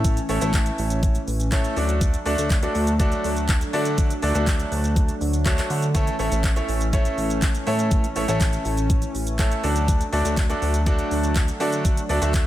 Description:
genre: dance-pop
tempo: 122 BPM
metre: 4/4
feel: straight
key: unclear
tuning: A4 = 440 Hz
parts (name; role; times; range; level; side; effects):
- clear concert grand piano; accompaniment; 0.0-12.5 s; A3 to E5; -26 LUFS; equal; sidechain pumping
- chorused pulse-width pad; sustained chords; 0.0-12.5 s; E3 to D4; -30 LUFS; right 1 dB; sidechain pumping
- chorused synth bass; bass; 0.0-12.5 s; A1 to D3; -24 LUFS; equal; sidechain pumping
- pop drum kit; drums; 0.0-12.5 s; handclaps, hi-hat, kick drum, shaker; -23 LUFS; equal; none
room: little or no reverb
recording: none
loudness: -19 LUFS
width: side -14 dB against mid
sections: 0.0-12.5 A section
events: none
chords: 0.0 A; 1.8 D; 5.9 A; 9.6 D

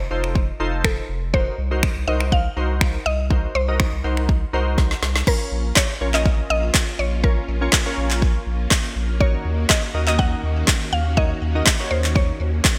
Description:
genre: dance-pop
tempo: 122 BPM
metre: 4/4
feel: straight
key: Bb harmonic minor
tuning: A4 = 441 Hz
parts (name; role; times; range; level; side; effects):
- mallet-like synth pluck; melody; 0.0-12.8 s; A4 to Gb5; -29 LUFS; equal; chorus, digital delay
- round analog bass; bass; 0.0-12.6 s; F1 to Eb2; -25 LUFS; equal; sidechain pumping
- glassy digital keys; accompaniment; 0.1-12.4 s; Db4 to Eb5; -30 LUFS; equal; chorus, sidechain pumping
- deep house drum kit; drums; 0.2-12.8 s; crash cymbal, finger snaps, handclaps, kick drum, snare drum; -21 LUFS; equal; gated reverb
- string machine, violas; sustained chords; 5.3-12.8 s; Eb3 to Gb4; -35 LUFS; equal; ensemble chorus, sidechain pumping
room: light reverb, digital ambience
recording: bright 1980s-style digital production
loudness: -20 LUFS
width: mono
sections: 0.0-5.3 A section; 5.3-12.8 B section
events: drum fill 4.8-5.3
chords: 0.0 F7; 1.3 Cm7b5; 5.3 Bbm; 9.2 Ebm7

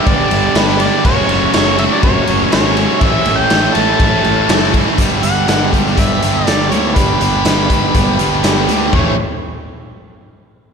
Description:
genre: classic rock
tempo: 122 BPM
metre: 4/4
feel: straight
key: unclear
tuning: A4 = 440 Hz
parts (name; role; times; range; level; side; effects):
- mellow harmonica; melody; 0.0-9.2 s; B4 to A5; -19 LUFS; equal; slapback echo
- bright tonewheel organ; sustained chords; 0.0-9.3 s; E4 to D5; -27 LUFS; equal; none
- biting overdriven guitar; riff; 0.0-9.1 s; F#2 to G4; -18 LUFS; right 11 dB; spring reverb, slapback echo
- tight distorted guitar; riff; 0.0-9.1 s; F#2 to A3; -19 LUFS; left 12 dB; distortion, slapback echo
- fuzz picked electric bass; bass; 0.1-9.2 s; F#1 to D2; -20 LUFS; equal; overdrive
- raw garage drum kit; drums; 0.1-9.0 s; hi-hat, kick drum, ride cymbal, snare drum, toms; -16 LUFS; left 1 dB; none
room: light reverb, small room ambience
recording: none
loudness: -11 LUFS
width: side -6 dB against mid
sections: 0.0-5.0 A section; 5.0-8.9 B section; 8.9-10.7 C section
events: none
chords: 0.0 G; 1.1 F#m; 3.0 A; 5.0 G; 8.9 A

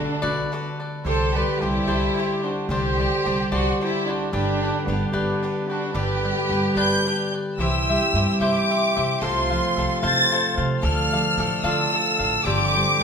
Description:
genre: mexican folk, mariachi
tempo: 74 BPM (dotted quarters)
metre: 6/8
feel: straight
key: G major, C major from 7.6 s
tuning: A4 = 441 Hz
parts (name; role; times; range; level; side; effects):
- warm symphonic violin section; melody; 0.0-13.0 s; B3 to A6; -24 LUFS; equal; none
- cavaquinho; accompaniment; 0.0-13.0 s; D4 to F5; -27 LUFS; left 2 dB; none
- concert harp; arpeggios; 0.0-13.0 s; C3 to A5; -26 LUFS; left 1 dB; none
- upright bass; bass; 0.0-13.0 s; G1 to D3; -27 LUFS; right 1 dB; none
- mellow trumpet; second line; 1.1-13.0 s; D4 to C5; -30 LUFS; right 4 dB; none
- pipe organ, principal; sustained chords; 7.6-13.0 s; C3 to F4; -33 LUFS; right 1 dB; none
room: wet recital hall reverb, RT60 1.4 s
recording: minimal, uncompressed stereo recording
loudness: -20 LUFS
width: side -6 dB against mid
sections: 0.0-7.6 A section; 7.6-13.0 B section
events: none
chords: 0.0 Bm7; 1.1 Csus2; 4.3 G; 7.6 C; 9.2 F/C; 10.8 Dm; 12.5 Gsus4

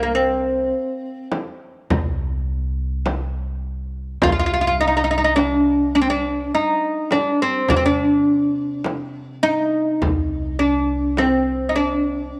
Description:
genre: Turkish makam ensemble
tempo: 103 BPM (eighths)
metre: 10/8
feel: straight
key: unclear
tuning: A4 = 440 Hz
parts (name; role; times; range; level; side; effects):
- oud; melody; 0.0-12.4 s; Bb3 to F4; -20 LUFS; equal; none
- upright bass; bass; 0.0-12.3 s; C2 to C3; -29 LUFS; equal; none
- darbuka; percussion; 1.3-11.5 s; none; -29 LUFS; equal; none
- frame drum; percussion; 1.3-11.4 s; none; -27 LUFS; equal; none
room: moderate echo chamber reverb, RT60 1.6 s, small room ambience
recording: none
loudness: -20 LUFS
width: mono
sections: 0.0-12.4 A section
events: none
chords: none

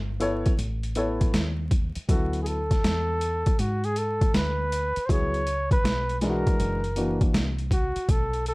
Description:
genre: hip hop, jazz-hop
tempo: 80 BPM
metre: 4/4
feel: swing 66% on 16ths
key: unclear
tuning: A4 = 442 Hz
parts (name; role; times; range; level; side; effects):
- deep dub fingered electric bass; bass; 0.0-8.5 s; F#1 to G#2; -29 LUFS; equal; none
- dark concert grand piano; accompaniment; 0.2-7.4 s; E3 to C#5; -28 LUFS; left 1 dB; none
- boom bap sampler-style drum kit; drums; 0.2-8.5 s; hi-hat, kick drum, snare drum; -25 LUFS; equal; overdrive
- mellow flugelhorn; melody; 2.1-8.5 s; F#4 to C#5; -28 LUFS; equal; none
room: light reverb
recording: vinyl crackle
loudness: -23 LUFS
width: side -24 dB against mid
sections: 0.0-8.1 A section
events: none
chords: 0.0 Em; 0.6 A; 2.1 Dadd9; 5.1 C#m7; 6.6 F#aug7

